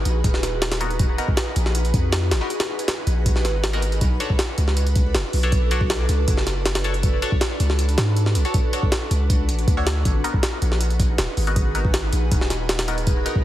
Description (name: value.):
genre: drum and bass, jungle.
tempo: 159 BPM.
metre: 4/4.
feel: straight.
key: unclear.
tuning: A4 = 440 Hz.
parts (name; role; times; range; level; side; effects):
ethereal airy pad; sustained chords; 0.0-13.4 s; D4 to B4; -29 LUFS; right 1 dB; ensemble chorus, built-in reverb, phaser.
long sustained 808-style bass; bass; 0.0-13.2 s; D#1 to G#2; -22 LUFS; equal; none.
jungle sampler-style drum kit; drums; 0.1-13.4 s; hi-hat, kick drum, snare drum; -22 LUFS; equal; none.
band-passed chord stab; stabs; 0.8-13.4 s; B3 to C#5; -30 LUFS; left 2 dB; phaser, wide subtle chorus, dub echo.
room: light reverb.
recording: heavily compressed radio sound.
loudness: -18 LUFS.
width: side -13 dB against mid.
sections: 0.0-13.4 A section.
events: none.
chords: 0.0 G#m7; 4.0 Bm7; 10.1 G#m7.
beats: 0.24 0.62 | 0.99 1.37 1.75 2.13 | 2.50 2.88 3.26 3.64 | 4.01 4.39 4.77 5.15 | 5.52 5.90 6.28 6.66 | 7.03 7.41 7.79 8.16 | 8.54 8.92 9.30 9.67 | 10.05 10.43 10.81 11.18 | 11.56 11.94 12.31 12.69 | 13.07.